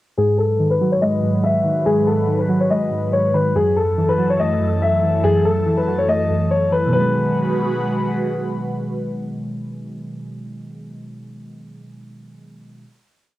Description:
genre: hip hop, drill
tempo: 142 BPM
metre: 4/4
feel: half-time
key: G# phrygian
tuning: A4 = 440 Hz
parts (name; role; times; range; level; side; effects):
- dark concert grand piano; melody; 0.2-8.2 s; G#4 to E5; -19 LUFS; left 2 dB; low-pass filter, cassette tape
- warbly lo-fi synth keys; accompaniment; 0.2-12.8 s; F#2 to A3; -21 LUFS; right 1 dB; chorus, low-pass filter
- airy breathy pad; sustained chords; 0.5-9.9 s; F#2 to B4; -25 LUFS; right 1 dB; chorus, phaser, low-pass filter
room: moderate booth ambience, RT60 0.2 s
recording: home recording on cassette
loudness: -16 LUFS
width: side -16 dB against mid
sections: 0.2-6.9 breakdown; 6.9-10.3 final chord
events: filter sweep 0.2-6.9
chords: 0.2 G#m7; 3.6 F#m7; 6.9 G#m7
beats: | 0.17 0.59 1.01 1.44 | 1.86 2.28 2.71 3.13 | 3.55 3.97 4.40 4.82 | 5.24 5.66 6.09 6.51 | 6.93 7.35 7.78 8.20 | 8.62 9.04 9.47 9.89

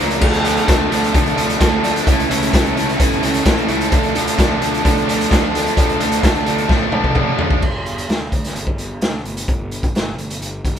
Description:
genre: indie rock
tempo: 130 BPM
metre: 4/4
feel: straight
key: D harmonic minor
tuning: A4 = 439 Hz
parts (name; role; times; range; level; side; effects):
- combo organ; sustained chords; 0.0-7.6 s; E4 to Bb5; -32 LUFS; right 1 dB; none
- raw garage guitar; riff; 0.0-7.6 s; Bb2 to E4; -19 LUFS; left 3 dB; overdrive
- raw garage guitar; riff; 0.0-7.6 s; E3 to D4; -20 LUFS; right 5 dB; overdrive
- fuzz picked electric bass; bass; 0.0-10.8 s; G1 to D3; -25 LUFS; equal; overdrive
- raw garage drum kit; drums; 0.0-10.8 s; crash cymbal, hi-hat, kick drum, snare drum, toms; -18 LUFS; equal; none
room: moderate large studio reverb, RT60 0.9 s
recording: band playing live in one room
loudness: -14 LUFS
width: side -8 dB against mid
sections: 0.0-7.6 A section; 7.6-10.8 B section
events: drum fill 6.7-7.6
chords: 0.2 Dm; 2.1 A/C#; 3.9 Dm; 7.6 G5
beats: | 0.21 0.68 1.14 1.60 | 2.07 2.53 2.99 3.46 | 3.92 4.38 4.84 5.31 | 5.77 6.23 6.70 7.16 | 7.62 8.09 8.55 9.02 | 9.48 9.95 10.42

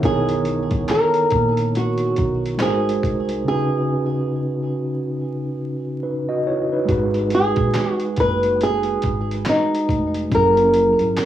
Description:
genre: lo-fi hip hop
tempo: 70 BPM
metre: 4/4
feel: swing 60% on 16ths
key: G# minor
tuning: A4 = 438 Hz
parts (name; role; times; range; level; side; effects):
- mellow tine electric piano; accompaniment; 0.0-11.3 s; C#3 to D#5; -22 LUFS; equal; medium stereo tremolo, cassette tape
- upright bass; bass; 0.0-11.2 s; E#1 to C#2; -26 LUFS; equal; none
- dusty soul sampler-style drum kit; drums; 0.0-11.3 s; handclaps, hi-hat, kick drum, snare drum; -26 LUFS; equal; cassette tape
- flamenco guitar; melody; 0.1-11.3 s; D#4 to B4; -20 LUFS; right 1 dB; cassette tape, tape echo, plate reverb
- finger snaps; percussion; 0.9-11.3 s; none; -39 LUFS; left 4 dB; none
room: moderate studio reverb, RT60 0.5 s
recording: home recording on cassette, vinyl crackle, small room ambience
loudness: -17 LUFS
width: side -11 dB against mid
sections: 0.0-6.9 A section; 6.9-11.3 A section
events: break 3.5-6.9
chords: 0.0 Bmaj7; 2.6 G#7; 3.5 C#7sus4; 6.9 G#m7; 10.3 F#7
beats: | 0.03 0.89 1.74 2.60 | 3.46 4.31 5.17 6.03 | 6.89 7.74 8.60 9.46 | 10.31 11.17

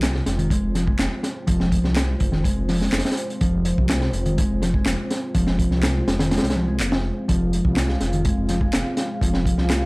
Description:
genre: breakbeat, breaks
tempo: 124 BPM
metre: 4/4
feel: straight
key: F minor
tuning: A4 = 440 Hz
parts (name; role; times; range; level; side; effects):
- dark analog pad; sustained chords; 0.0-9.9 s; Ab3 to F5; -29 LUFS; equal; chorus, sidechain pumping
- picked electric bass; riff; 0.0-9.8 s; Eb3 to Bb3; -25 LUFS; equal; none
- detuned saw bass; bass; 0.0-9.9 s; F1 to C2; -24 LUFS; equal; none
- crunchy breakbeat drum kit; drums; 0.0-9.8 s; hi-hat, kick drum, snare drum; -23 LUFS; equal; none
- electronic handclaps; drums; 0.0-9.8 s; none; -29 LUFS; equal; overdrive
room: little or no reverb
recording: dry, gritty hardware recording, vinyl crackle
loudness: -19 LUFS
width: side -26 dB against mid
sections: 0.0-9.9 A section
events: none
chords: 0.0 Fm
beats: 0.02 0.51 0.99 | 1.48 1.96 2.44 2.93 | 3.41 3.89 4.38 4.86 | 5.35 5.83 6.31 6.80 | 7.28 7.76 8.25 8.73 | 9.22 9.70

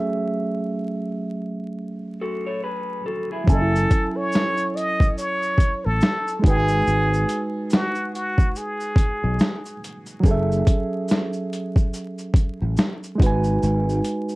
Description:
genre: lo-fi hip hop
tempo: 71 BPM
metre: 4/4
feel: swing 60% on 16ths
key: F# dorian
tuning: A4 = 441 Hz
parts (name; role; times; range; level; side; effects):
- reed electric piano; accompaniment; 0.0-14.4 s; F#3 to G#5; -26 LUFS; right 2 dB; cassette tape, low-pass filter
- electric guitar through a small old amp; second line; 2.2-3.7 s; E4 to C#5; -29 LUFS; left 1 dB; low-pass filter, tape echo
- trumpet with plunger mute; melody; 3.5-9.8 s; F#4 to D#5; -24 LUFS; equal; low-pass filter
- sustaining fretless electric bass; bass; 3.5-14.0 s; F#1 to B1; -22 LUFS; equal; lush chorus
- boom bap sampler-style drum kit; drums; 3.5-14.4 s; hi-hat, kick drum, shaker, snare drum; -19 LUFS; equal; overdrive
room: light reverb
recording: dark, warm production, vinyl crackle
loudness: -20 LUFS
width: side -21 dB against mid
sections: 0.0-3.5 A section; 3.5-14.4 B section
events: break 0.1-3.5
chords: 0.0 F#m9; 6.4 G#m7; 10.2 F#m7; 13.2 G#m7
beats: | 0.10 0.94 1.79 2.63 | 3.48 4.32 5.17 6.01 | 6.86 7.71 8.55 9.39 | 10.24 11.09 11.93 12.78 | 13.62

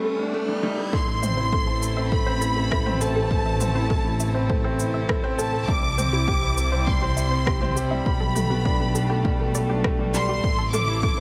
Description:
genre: piano and strings electronica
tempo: 101 BPM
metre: 4/4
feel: straight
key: A minor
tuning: A4 = 439 Hz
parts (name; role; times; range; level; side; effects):
- felt-muted upright piano; riff; 0.0-11.2 s; G3 to A4; -30 LUFS; equal; digital delay
- riser and swell; sound effects; 0.0-0.9 s; none; -34 LUFS; equal; none
- rich studio violin section; melody; 0.9-11.2 s; A5 to D6; -30 LUFS; equal; none
- rich string quartet; sustained chords; 0.9-11.2 s; B2 to G4; -36 LUFS; equal; sidechain pumping
- unison pluck; arpeggios; 0.9-11.2 s; G4 to E5; -38 LUFS; equal; none
- muted studio double bass section; bass; 0.9-11.2 s; A1 to C2; -28 LUFS; equal; sidechain pumping
- electronic kick drum; drums; 0.9-11.2 s; none; -28 LUFS; equal; overdrive
- deep house drum kit; drums; 1.2-10.9 s; rim click, shaker, toms; -32 LUFS; equal; overdrive
room: light reverb, small room ambience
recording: none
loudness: -23 LUFS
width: mono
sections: 0.9-11.2 A section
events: break 0.0-0.9; riser 0.0-0.9; swell 0.0-0.9; drop 0.9-11.2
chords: 0.0 Gadd9; 0.9 Am; 5.7 C; 8.1 Gadd9/B; 10.4 Am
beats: 0.34 | 0.93 1.53 2.12 2.71 | 3.31 3.90 4.50 5.09 | 5.68 6.28 6.87 7.47 | 8.06 8.66 9.25 9.84 | 10.44 11.03

